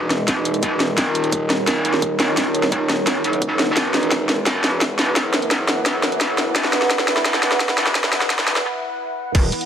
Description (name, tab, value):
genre	dark technical drum and bass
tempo	172 BPM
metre	4/4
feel	straight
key	unclear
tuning	A4 = 440 Hz
part	deep dark ambient pad	sustained chords	0.0-9.7 s	Eb4 to Gb5	-23 LUFS	right 2 dB	chorus, built-in reverb, sidechain pumping
part	metallic wobble bass	bass	0.0-9.5 s	Eb1 to Gb1	-22 LUFS	equal	distortion, chorus, tube saturation, high-pass filter
part	drum and bass drum kit	drums	0.1-9.7 s	crash cymbal, hi-hat, rim click, snare drum	-20 LUFS	equal	high-pass filter on hats, high-pass filter on snare, high-pass filter on cymbals
part	electronic kick drum	drums	0.3-9.4 s	none	-23 LUFS	equal	high-pass filter on kick
room	moderate lush hall reverb, RT60 2.1 s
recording	high-pass filter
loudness	-17 LUFS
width	side -8 dB against mid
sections	0.0-9.3 A section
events	build-up 0.0-9.3; drum fill 0.0-8.7; break 8.7-9.3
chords	0.0 Ebm; 3.8 E5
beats	0.28 0.63 | 0.98 1.32 1.67 2.02 | 2.37 2.72 3.07 3.42 | 3.77 4.12 4.46 4.81 | 5.16 5.51 5.86 6.21 | 6.56 6.91 7.25 7.60 | 7.95 8.30 8.65 9.00 | 9.35